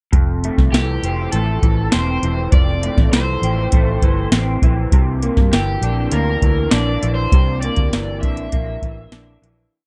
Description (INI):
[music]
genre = indie pop, bedroom pop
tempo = 100 BPM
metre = 4/4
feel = straight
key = F major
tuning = A4 = 438 Hz
[part]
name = electric guitar through a small old amp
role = accompaniment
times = 0.1-9.9 s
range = F2 to D4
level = -25 LUFS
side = equal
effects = analog chorus, warbly pitch drift
[part]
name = vintage muted fingered electric bass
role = bass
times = 0.1-9.7 s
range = E1 to G2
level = -23 LUFS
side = equal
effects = none
[part]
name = soft vintage rhythm box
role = drums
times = 0.1-9.6 s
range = hi-hat, kick drum, snare drum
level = -18 LUFS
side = equal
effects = vintage 12-bit sampler grit
[part]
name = overdriven slide guitar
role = melody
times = 0.7-9.4 s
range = G4 to E5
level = -28 LUFS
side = equal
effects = subtle chorus, analog delay
[sound]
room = little or no reverb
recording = none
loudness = -17 LUFS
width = mono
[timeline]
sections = 0.1-9.7 verse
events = fade-out 7.3-9.7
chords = 0.1 Fmaj7; 4.9 C9